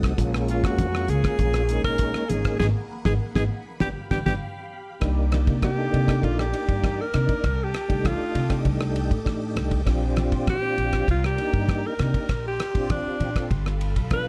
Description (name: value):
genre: electric jazz fusion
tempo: 99 BPM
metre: 4/4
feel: straight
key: C dorian from 5.0 s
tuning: A4 = 440 Hz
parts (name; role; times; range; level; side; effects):
- tonewheel organ; accompaniment; 0.0-14.3 s; Gb3 to Bb4; -32 LUFS; equal; chorus vibrato, slow rotary speaker
- phased string machine; sustained chords; 0.0-14.3 s; A#3 to Eb6; -40 LUFS; equal; ensemble chorus, phaser
- upright bass; bass; 0.0-14.3 s; G1 to C3; -28 LUFS; equal; none
- damped 70s drum kit; drums; 0.0-14.3 s; hi-hat, kick drum, ride cymbal, rim click, snare drum; -30 LUFS; equal; none
- congas; percussion; 0.2-14.3 s; none; -34 LUFS; equal; none
- clear alto saxophone; melody; 0.5-14.3 s; D4 to B4; -30 LUFS; equal; none
room: light reverb, small room ambience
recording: dark, warm production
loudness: -24 LUFS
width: mono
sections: 0.0-5.0 A section; 5.0-14.3 B section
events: band accent 2.6-5.0; drum fill 4.7-5.0; alto saxophone solo 5.0-14.3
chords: 0.2 A#m7; 2.6 G#m9; 3.8 G7; 5.0 Cm9; 7.4 F13/C; 9.9 Bb69; 11.1 Cm9; 12.3 Bb69; 13.5 G9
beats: | 0.18 0.79 1.39 2.00 | 2.60 3.21 3.81 4.42 | 5.02 5.63 6.23 6.84 | 7.45 8.05 8.66 9.26 | 9.87 10.48 11.08 11.69 | 12.29 12.90 13.50 14.11